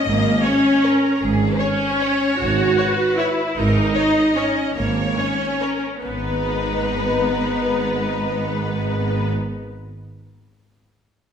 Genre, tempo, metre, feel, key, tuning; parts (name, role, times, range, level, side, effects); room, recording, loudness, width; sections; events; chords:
classical, orchestral ballroom waltz; 136-168 BPM; 3/4; rubato; G# minor; A4 = 441 Hz
rich symphonic violin section; second line; 0.0-9.3 s; D#4 to D#5; -25 LUFS; left 2 dB
clear symphonic viola section; accompaniment; 0.0-9.3 s; A#3 to F#4; -20 LUFS; equal
clear symphonic cello section; bass; 0.0-9.3 s; G#2; -27 LUFS; right 3 dB
clear symphonic double bass section; bass; 0.0-9.3 s; G#1; -26 LUFS; right 2 dB
warm symphonic violin section; melody; 0.4-9.3 s; B4 to C#5; -28 LUFS; left 5 dB
wet recital hall reverb, RT60 1.5 s; recorded in a church or concert hall; -17 LUFS; side -8 dB against mid
0.0-6.0 A section; 6.0-8.5 B section
slowing down 3.0-6.0
0.0 C#5/G#; 6.0 G#m